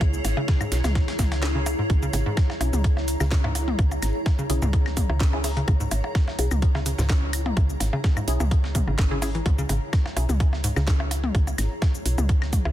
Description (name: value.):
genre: minimal techno.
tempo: 127 BPM.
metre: 4/4.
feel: swing 53% on 16ths.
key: C# dorian.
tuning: A4 = 441 Hz.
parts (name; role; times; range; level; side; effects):
woody FM bass; bass; 0.0-12.7 s; G#1 to C#2; -25 LUFS; equal; sidechain pumping.
breakbeat sampler-style drum kit; drums; 0.0-12.6 s; hi-hat, snare drum; -39 LUFS; left 1 dB; sidechain pumping on hats, high-pass filter on hats, high-pass filter on snare, high-pass filter on room.
electronic kick drum; drums; 0.0-12.6 s; none; -23 LUFS; equal; none.
electronic percussion blips, claves and toms; percussion; 0.0-12.7 s; none; -32 LUFS; left 3 dB; tape echo.
granular cloud pad; texture; 0.0-12.7 s; E4 to A#5; -32 LUFS; equal; built-in reverb, sidechain pumping.
garage drum kit; drums; 0.1-12.6 s; cabasa, hi-hat, snare drum; -32 LUFS; right 1 dB; none.
hollow square pluck; riff; 0.4-10.9 s; G#2 to E3; -30 LUFS; equal; chorus, sidechain pumping, dub echo.
filtered dub chord stab; stabs; 2.6-10.2 s; C#4 to G#4; -34 LUFS; left 3 dB; phaser, tape echo.
room: little or no reverb.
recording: dense, heavily limited modern master.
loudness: -21 LUFS.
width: side -13 dB against mid.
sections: 0.0-12.7 A section.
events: kick drops out 1.4-1.9.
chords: 0.0 C#m.